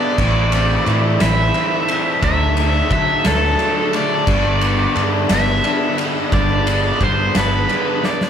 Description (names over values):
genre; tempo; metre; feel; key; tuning
post-rock; 59 BPM (dotted quarters); 6/8; straight; G major; A4 = 439 Hz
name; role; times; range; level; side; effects
overdriven electric guitar; melody; 0.0-8.3 s; A4 to E5; -20 LUFS; right 2 dB; analog delay
soft additive organ-like pad; sustained chords; 0.0-8.3 s; D4 to B5; -32 LUFS; equal; none
semi-hollow electric guitar; arpeggios; 0.0-8.3 s; A2 to E4; -25 LUFS; left 4 dB; none
distorted electric guitar; riff; 0.0-8.3 s; G2 to E4; -23 LUFS; left 8 dB; overdrive
distorted electric guitar; riff; 0.0-8.3 s; G2 to E4; -25 LUFS; right 7 dB; distortion
fingered electric bass; bass; 0.2-7.6 s; G1 to D3; -20 LUFS; right 1 dB; none
oversized low-tuned drum kit; drums; 0.2-8.3 s; crash cymbal, kick drum, ride cymbal, snare drum; -20 LUFS; equal; none
room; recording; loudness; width
moderate large studio reverb, RT60 0.8 s; band playing live in one room; -14 LUFS; side -8 dB against mid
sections
0.0-8.3 A section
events
drum fill 8.0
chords
0.2 Am; 2.2 Dadd9; 4.3 Gadd9